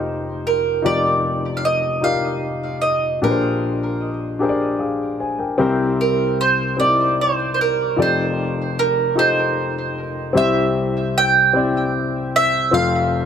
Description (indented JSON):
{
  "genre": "gospel",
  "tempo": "50 BPM (dotted quarters)",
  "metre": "6/8",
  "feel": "straight",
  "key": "unclear",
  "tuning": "A4 = 440 Hz",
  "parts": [
    { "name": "mandolin", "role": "melody", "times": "0.0-13.3 s", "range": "Bb4 to G5", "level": "-19 LUFS", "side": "right 3 dB", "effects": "tape echo" },
    { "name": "dark grand piano", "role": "accompaniment", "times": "0.0-13.3 s", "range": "F1 to Ab5", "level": "-20 LUFS", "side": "left 3 dB", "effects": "none" }
  ],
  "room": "light reverb",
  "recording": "dark, warm production",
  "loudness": "-16 LUFS",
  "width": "side -8 dB against mid",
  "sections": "0.0-10.4 A section; 10.4-13.3 B section",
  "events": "none",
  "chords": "0.0 F9sus4; 3.2 Bb13; 5.6 C7; 8.0 F13; 10.4 C; 12.7 F"
}